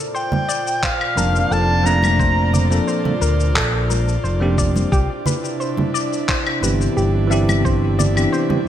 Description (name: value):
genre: sunset chillout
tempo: 88 BPM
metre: 4/4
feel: straight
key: Bb major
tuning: A4 = 440 Hz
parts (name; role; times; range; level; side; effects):
- airy breathy pad; sustained chords; 0.0-8.7 s; Bb2 to D5; -25 LUFS; right 2 dB; chorus, shimmer reverb
- electronic shaker, handclaps and claves; drums; 0.0-8.5 s; none; -25 LUFS; left 2 dB; gated reverb
- soft round pluck; arpeggios; 0.1-8.5 s; G4 to F5; -26 LUFS; left 2 dB; chorus, ping-pong delay, shimmer reverb
- warm soprano saxophone; melody; 0.2-2.5 s; F5 to Bb5; -22 LUFS; equal; ping-pong delay, shimmer reverb
- congas; percussion; 0.3-8.6 s; none; -24 LUFS; right 3 dB; none
- electronic kick drum; drums; 0.8-7.8 s; none; -22 LUFS; equal; none
- bell-like tine electric piano; accompaniment; 1.2-8.6 s; E3 to A5; -23 LUFS; equal; auto-pan, ping-pong delay, shimmer reverb
- overdriven fingered electric bass; bass; 1.2-8.2 s; F1 to D2; -18 LUFS; equal; tube saturation
room: moderate plate reverb, RT60 2.0 s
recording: bright 1980s-style digital production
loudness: -16 LUFS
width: side -10 dB against mid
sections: 0.0-8.7 A section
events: none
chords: 0.0 Bbmaj9; 4.9 Cmaj9